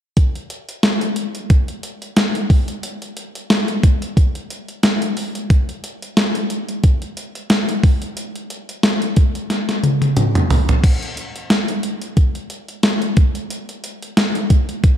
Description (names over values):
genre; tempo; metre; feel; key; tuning
pop; 90 BPM; 4/4; swing 55% on 16ths; none; none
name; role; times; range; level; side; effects
clean 12-bit digital drum machine; drums; 0.2-15.0 s; crash cymbal, hi-hat, kick drum, snare drum, toms; -16 LUFS; equal; overdrive
room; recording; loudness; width
moderate lush hall reverb, RT60 2.5 s; dark, warm production; -15 LUFS; side -10 dB against mid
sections
0.2-10.8 A section; 10.8-15.0 B section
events
drum fill 9.5-10.8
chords
none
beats
| 0.17 0.83 1.50 2.17 | 2.83 3.50 4.17 4.83 | 5.50 6.17 6.83 7.50 | 8.17 8.84 9.50 10.17 | 10.84 11.50 12.17 12.84 | 13.50 14.17 14.84